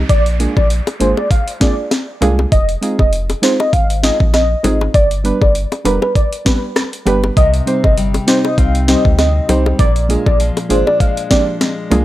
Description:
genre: dancehall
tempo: 99 BPM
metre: 4/4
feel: swing 56% on 16ths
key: unclear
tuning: A4 = 440 Hz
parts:
  - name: sub bass with octave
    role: bass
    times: 0.0-12.0 s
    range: F1 to D2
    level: -17 LUFS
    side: equal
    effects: none
  - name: downlifter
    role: sound effects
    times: 0.0-2.5 s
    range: none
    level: -34 LUFS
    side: right 2 dB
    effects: none
  - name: warm velvety synth lead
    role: melody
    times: 0.1-11.4 s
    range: Bb4 to F5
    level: -18 LUFS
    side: equal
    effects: chorus, tape echo
  - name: island pop drum kit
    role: drums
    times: 0.1-12.0 s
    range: hi-hat, kick drum, rim click, snare drum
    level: -14 LUFS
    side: equal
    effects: overdrive
  - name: deep mellow chord stab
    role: accompaniment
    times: 0.4-12.0 s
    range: G3 to C5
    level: -18 LUFS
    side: right 2 dB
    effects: chorus, sidechain pumping
  - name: bongos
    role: percussion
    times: 0.6-12.0 s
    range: none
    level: -21 LUFS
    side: left 4 dB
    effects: none
  - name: fingerpicked steel-string acoustic guitar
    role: arpeggios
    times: 7.4-12.0 s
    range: Bb2 to Eb4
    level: -22 LUFS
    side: left 3 dB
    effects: none
room: digital ambience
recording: dry, gritty hardware recording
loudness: -12 LUFS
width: side -15 dB against mid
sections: 0.0-12.0 A section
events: none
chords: 0.1 Bb7; 2.5 Fm7; 4.9 G; 7.4 Cm; 9.8 Bb7

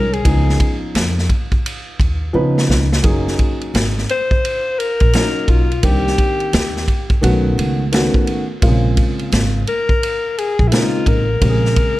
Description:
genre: hip hop, jazz-hop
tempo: 86 BPM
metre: 4/4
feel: swing 63% on 16ths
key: Bb minor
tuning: A4 = 439 Hz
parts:
  - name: breathy alto saxophone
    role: melody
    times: 0.0-12.0 s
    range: E4 to C5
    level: -20 LUFS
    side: left 3 dB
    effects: none
  - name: dark baby grand piano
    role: accompaniment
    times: 0.0-12.0 s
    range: C3 to Cb5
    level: -20 LUFS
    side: equal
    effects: none
  - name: upright bass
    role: bass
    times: 0.0-11.7 s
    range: Gb1 to Db3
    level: -18 LUFS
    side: equal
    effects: none
  - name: vintage drum kit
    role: drums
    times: 0.1-12.0 s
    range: hi-hat, kick drum, ride cymbal, snare drum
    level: -18 LUFS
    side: equal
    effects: none
room: little or no reverb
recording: none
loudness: -14 LUFS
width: side -17 dB against mid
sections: 0.0-12.0 A section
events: drum fill 2.3-3.0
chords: 0.3 Db9; 3.0 Gb6; 5.8 Cm7; 7.2 B9; 8.6 Bbm9

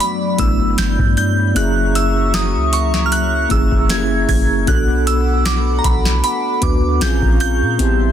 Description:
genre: contemporary R&B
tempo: 77 BPM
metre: 4/4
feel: swing 54% on 16ths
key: unclear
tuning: A4 = 440 Hz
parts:
  - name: glassy synth bell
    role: melody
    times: 0.0-8.1 s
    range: Bb5 to Ab6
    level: -20 LUFS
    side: right 2 dB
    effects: chorus, ping-pong delay
  - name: mellow tine electric piano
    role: accompaniment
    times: 0.0-8.1 s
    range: A3 to B4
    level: -20 LUFS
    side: equal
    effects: medium stereo tremolo
  - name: chorused pulse-width pad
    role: sustained chords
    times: 0.0-8.1 s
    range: F#3 to D6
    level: -24 LUFS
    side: left 3 dB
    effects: sidechain pumping
  - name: booming analog drum machine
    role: drums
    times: 0.0-8.0 s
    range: hi-hat, kick drum, snare drum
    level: -18 LUFS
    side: equal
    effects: soft clipping on snare
  - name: soft 808-style bass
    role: bass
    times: 0.4-8.1 s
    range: F#1 to Bb2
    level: -18 LUFS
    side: equal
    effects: none
room: digital ambience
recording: dense, heavily limited modern master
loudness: -13 LUFS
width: side -10 dB against mid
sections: 0.0-8.1 A section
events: none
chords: 0.0 Gmaj7; 1.6 F#7; 4.7 Bm7; 7.0 Bbm7

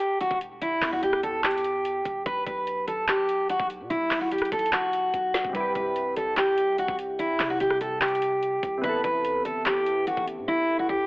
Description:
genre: hip hop, trap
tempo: 146 BPM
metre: 4/4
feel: half-time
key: E minor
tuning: A4 = 440 Hz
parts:
  - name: picked steel-string acoustic guitar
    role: melody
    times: 0.0-11.1 s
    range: E4 to B4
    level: -24 LUFS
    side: equal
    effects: low-pass filter
  - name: trap drum kit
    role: drums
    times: 0.0-10.4 s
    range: handclaps, hi-hat, kick drum, rim click, snare drum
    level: -29 LUFS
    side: equal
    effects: none
  - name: long sustained 808-style bass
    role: bass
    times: 0.3-10.5 s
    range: E1 to C3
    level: -42 LUFS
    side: equal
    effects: none
  - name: glassy digital keys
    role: accompaniment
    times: 5.5-11.1 s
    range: C3 to A4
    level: -33 LUFS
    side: equal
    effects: chorus, low-pass filter
room: light reverb, digital ambience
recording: vinyl crackle, telephone sound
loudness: -23 LUFS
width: side -23 dB against mid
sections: 0.0-11.1 A section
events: drum fill 5.1-5.5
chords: 0.0 Em; 2.3 B5; 5.5 C; 8.8 Amadd9

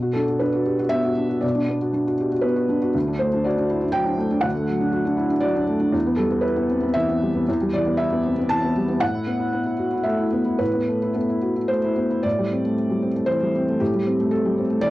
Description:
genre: neoclassical minimalist piano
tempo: 118 BPM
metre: 3/4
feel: rubato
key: A dorian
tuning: A4 = 439 Hz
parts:
  - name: felt-muted upright piano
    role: solo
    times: 0.0-14.9 s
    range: D2 to A5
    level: -19 LUFS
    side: equal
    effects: cassette tape
room: light reverb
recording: home recording on cassette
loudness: -19 LUFS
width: side -16 dB against mid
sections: 0.0-12.3 A section; 12.3-14.9 B section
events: none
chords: 0.0 Bm; 2.9 D; 5.9 Em; 9.0 Amadd9; 12.3 Am7

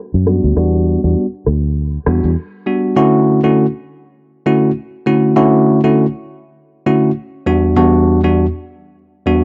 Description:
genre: afrobeats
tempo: 100 BPM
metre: 4/4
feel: swing 58% on 16ths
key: D major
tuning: A4 = 440 Hz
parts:
  - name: fingered electric bass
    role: bass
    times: 0.1-2.3 s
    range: D2 to F#2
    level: -16 LUFS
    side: equal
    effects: none
  - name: electronic shaker and rim click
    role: drums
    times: 0.1-2.4 s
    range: none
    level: -24 LUFS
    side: equal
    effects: none
  - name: bell-like tine electric piano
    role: accompaniment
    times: 0.3-9.4 s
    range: E2 to F#4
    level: -14 LUFS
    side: equal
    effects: none
room: little or no reverb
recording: dry, gritty hardware recording, transformer saturation, low-pass filter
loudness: -14 LUFS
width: mono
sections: 0.0-3.0 A section; 3.0-9.4 B section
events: filter sweep 0.0-3.0; break 2.4-3.0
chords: 0.0 Em7; 3.0 Dmaj7; 7.5 Em7

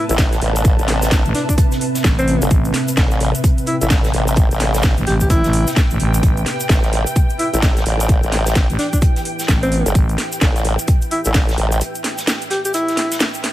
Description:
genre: bass house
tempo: 129 BPM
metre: 4/4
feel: swing 62% on 16ths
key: A minor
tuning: A4 = 440 Hz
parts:
  - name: breathy alto saxophone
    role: melody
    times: 0.0-13.2 s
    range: C4 to G4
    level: -22 LUFS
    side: equal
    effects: dub echo
  - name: deep dark ambient pad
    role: sustained chords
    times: 0.0-13.5 s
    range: A3 to B4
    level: -27 LUFS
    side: equal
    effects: chorus, built-in reverb, sidechain pumping
  - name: granular cloud pad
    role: texture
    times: 0.0-13.5 s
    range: B4 to A5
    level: -28 LUFS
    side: right 1 dB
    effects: built-in reverb, sidechain pumping
  - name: formant-sweep wobble bass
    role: bass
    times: 0.1-11.8 s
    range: G1 to A1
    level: -18 LUFS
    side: equal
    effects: chorus, overdrive, sidechain pumping
  - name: garage drum kit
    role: drums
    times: 0.1-13.5 s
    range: hi-hat, snare drum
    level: -22 LUFS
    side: equal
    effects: none
  - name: cabasa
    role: percussion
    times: 0.1-13.4 s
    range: none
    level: -29 LUFS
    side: left 1 dB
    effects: none
  - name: electronic kick drum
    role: drums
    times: 0.2-11.5 s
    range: none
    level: -15 LUFS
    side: equal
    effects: none
  - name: vintage brush drum kit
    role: drums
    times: 0.2-13.5 s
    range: hi-hat, snare drum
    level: -32 LUFS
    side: right 2 dB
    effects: none
  - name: growling FM bass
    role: bass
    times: 1.3-10.2 s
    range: A1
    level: -18 LUFS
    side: equal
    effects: tube saturation, sidechain pumping
room: small room reverb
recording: none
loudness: -14 LUFS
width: side -14 dB against mid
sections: 0.0-13.5 A section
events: break 11.8-13.5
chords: 0.0 Amadd9

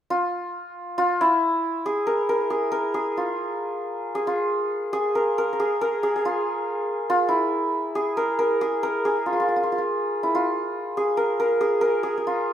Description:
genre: indian classical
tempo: 138 BPM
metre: 7/4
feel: straight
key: unclear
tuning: A4 = 440 Hz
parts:
  - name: santur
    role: solo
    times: 0.1-12.5 s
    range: E4 to A#4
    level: -22 LUFS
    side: equal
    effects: none
room: moderate large studio reverb, RT60 0.9 s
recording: band playing live in one room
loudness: -21 LUFS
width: side -10 dB against mid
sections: 0.1-12.5 A section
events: none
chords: none

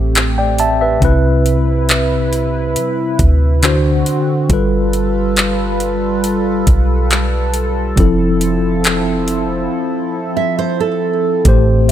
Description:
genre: contemporary R&B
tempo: 69 BPM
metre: 4/4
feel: straight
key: unclear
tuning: A4 = 440 Hz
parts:
  - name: mellow tine electric piano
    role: accompaniment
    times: 0.0-11.9 s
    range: A2 to A5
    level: -17 LUFS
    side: left 1 dB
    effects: medium stereo tremolo
  - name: chorused pulse-width pad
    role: sustained chords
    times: 0.0-11.9 s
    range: C3 to B4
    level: -20 LUFS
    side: equal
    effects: sidechain pumping
  - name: soft 808-style bass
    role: bass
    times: 0.0-11.9 s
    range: F1 to G3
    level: -17 LUFS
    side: equal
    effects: none
  - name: smooth R&B drum kit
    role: drums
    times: 0.2-11.9 s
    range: handclaps, hi-hat, kick drum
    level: -16 LUFS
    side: equal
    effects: none
  - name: nylon-string guitar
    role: arpeggios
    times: 10.4-11.4 s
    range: A4 to E5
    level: -17 LUFS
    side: right 9 dB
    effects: digital delay
  - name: worn celesta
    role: texture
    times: 11.9 s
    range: E5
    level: -22 LUFS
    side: right 2 dB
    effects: none
room: light reverb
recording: none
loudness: -12 LUFS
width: side -11 dB against mid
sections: 0.0-11.5 A section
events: break 9.7-11.5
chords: 0.0 Am7; 1.0 Cmaj7; 3.6 D7; 4.5 G9; 8.0 Fmaj7

